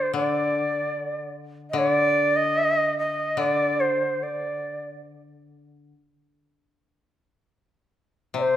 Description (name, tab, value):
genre	japanese traditional, Japanese chamber music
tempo	74 BPM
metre	2/4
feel	rubato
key	unclear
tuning	A4 = 439 Hz
part	reedy shakuhachi	melody	0.0-4.9, 8.4-8.6 s	C5 to Eb5	-22 LUFS	right 1 dB	none
part	koto	accompaniment	0.0-5.9, 8.3-8.6 s	C3 to D3	-29 LUFS	left 4 dB	none
room	moderate recital hall reverb, RT60 1.4 s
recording	recorded in a church or concert hall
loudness	-22 LUFS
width	side -11 dB against mid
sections	0.0-8.6 A section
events	none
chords	none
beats	| 0.16 0.96 | 1.76 2.57 | 3.40 4.24 | 5.08 5.92 | 6.75 7.56 | 8.37